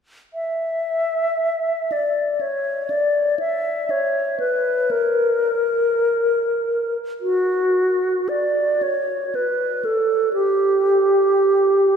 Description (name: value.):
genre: classical, free, expressive piece for unaccompanied alto flute.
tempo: 18-41 BPM (dotted quarters).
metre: 6/8.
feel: rubato.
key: unclear.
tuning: A4 = 440 Hz.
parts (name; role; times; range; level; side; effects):
bright alto flute; solo; 0.3-12.0 s; F#4 to E5; -18 LUFS; equal; none.
room: wet cathedral reverb, RT60 5.1 s.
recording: recorded in a church or concert hall.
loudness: -18 LUFS.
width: side -7 dB against mid.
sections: 0.3-7.2 A section; 7.2-12.0 B section.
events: none.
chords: none.